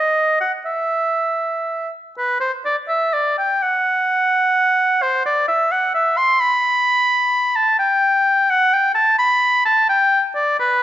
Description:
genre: classical, baroque-style fantasia for unaccompanied oboe.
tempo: 85 BPM (dotted quarters).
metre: 6/8.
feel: rubato.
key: G major.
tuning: A4 = 440 Hz.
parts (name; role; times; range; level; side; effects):
bright oboe; solo; 0.0-10.8 s; B4 to C6; -15 LUFS; equal; none.
room: moderate recital hall reverb, RT60 1.6 s.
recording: dark, warm production, nothing above 7.8 kHz.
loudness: -15 LUFS.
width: side -12 dB against mid.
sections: 0.0-2.2 A section; 2.2-10.8 A section.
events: none.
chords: none.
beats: | 0.66 1.42 | 2.17 2.89 | 3.61 4.31 | 5.01 5.71 | 6.40 7.10 | 7.79 8.49 | 9.19 9.90 | 10.60.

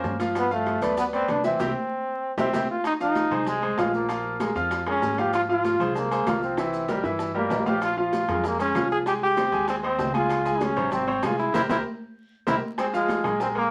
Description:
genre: latin, salsa.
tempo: 193 BPM.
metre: 4/4.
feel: straight.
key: F minor.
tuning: A4 = 440 Hz.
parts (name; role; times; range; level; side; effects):
brilliant trombone; melody; 0.0-13.7 s; Ab3 to Ab4; -28 LUFS; equal; none.
bright grand piano; accompaniment; 0.0-13.7 s; C3 to Ab5; -28 LUFS; equal; none.
upright bass; bass; 0.0-13.7 s; Ab1 to Ab2; -38 LUFS; equal; none.
bongos; percussion; 0.0-13.6 s; none; -37 LUFS; equal; none.
congas; percussion; 0.0-13.7 s; none; -38 LUFS; equal; none.
maracas; percussion; 0.0-13.6 s; none; -52 LUFS; equal; none.
timbales; percussion; 0.2-13.7 s; none; -37 LUFS; equal; none.
room: wet studio ambience, RT60 0.5 s.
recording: vinyl crackle.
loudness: -25 LUFS.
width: mono.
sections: 0.0-2.8 A section; 2.8-12.8 B section.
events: band accent 1.6-2.8, 11.5-12.8; drum fill 2.1-2.8, 6.9-7.8, 12.0-12.8.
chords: 0.4 G7; 1.6 C; 2.8 Fm7; 4.1 Bbm7; 5.3 Fm; 6.6 C7; 7.8 Bbm7; 9.1 Abmaj7/C; 10.3 Dbmaj7; 11.5 C7(no3); 12.8 Fm.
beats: 0.04 | 0.35 0.66 0.98 1.29 | 1.60 1.91 2.22 2.53 | 2.84 3.16 3.47 3.78 | 4.09 4.40 4.71 5.02 | 5.33 5.65 5.96 6.27 | 6.58 6.89 7.20 7.51 | 7.82 8.13 8.44 8.75 | 9.06 9.37 9.68 9.99 | 10.30 10.61 10.92 11.23 | 11.54 11.85 12.16 12.47 | 12.78 13.09 13.40.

